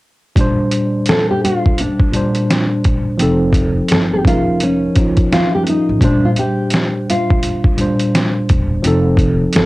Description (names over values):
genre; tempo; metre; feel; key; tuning
lo-fi hip hop; 85 BPM; 4/4; swing 61% on 16ths; Bb major; A4 = 439 Hz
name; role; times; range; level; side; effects
tine electric piano; accompaniment; 0.4-9.7 s; Bb2 to C5; -17 LUFS; equal; medium stereo tremolo, cassette tape, low-pass filter
trip hop sampler-style drum kit; drums; 0.4-9.7 s; hi-hat, kick drum, snare drum; -15 LUFS; equal; none
nylon-string guitar; melody; 1.1-9.7 s; Db4 to A4; -18 LUFS; equal; low-pass filter, cassette tape
upright bass; bass; 3.2-9.7 s; E1 to Bb1; -18 LUFS; equal; none
room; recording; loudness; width
light reverb; home recording on cassette; -12 LUFS; side -20 dB against mid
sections
0.4-9.7 A section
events
none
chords
0.4 Bb69; 3.2 F7; 4.2 Db6/F; 6.0 Bb69; 8.8 F7